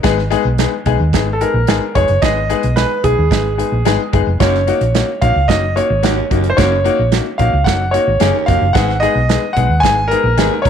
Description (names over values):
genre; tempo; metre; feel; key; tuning
uptempo 1960s-style soul; 110 BPM; 4/4; straight; unclear; A4 = 440 Hz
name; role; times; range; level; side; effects
bright upright piano; accompaniment; 0.0-10.7 s; G#3 to A#4; -19 LUFS; left 11 dB; none
hollow-body short-scale fingered electric bass; bass; 0.0-10.7 s; E#1 to D#2; -17 LUFS; equal; none
natural country drum kit; drums; 0.0-10.7 s; hi-hat, kick drum, snare drum; -19 LUFS; right 5 dB; none
clear grand piano; melody; 1.3-10.7 s; G#4 to G#5; -16 LUFS; right 1 dB; none
breathy baritone saxophone; riff; 4.4-10.7 s; D#2 to G#2; -24 LUFS; right 13 dB; none
room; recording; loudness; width
moderate spring reverb, RT60 1.7 s, small room ambience; 1960s-style stereo with parts hard left and right; -12 LUFS; side -8 dB against mid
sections
0.0-10.7 A section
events
none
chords
0.0 G#m; 4.4 F#6; 8.8 G#m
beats
| 0.04 0.59 1.13 1.68 | 2.22 2.77 3.31 3.86 | 4.40 4.95 5.49 6.04 | 6.58 7.12 7.67 8.21 | 8.75 9.30 9.84 10.38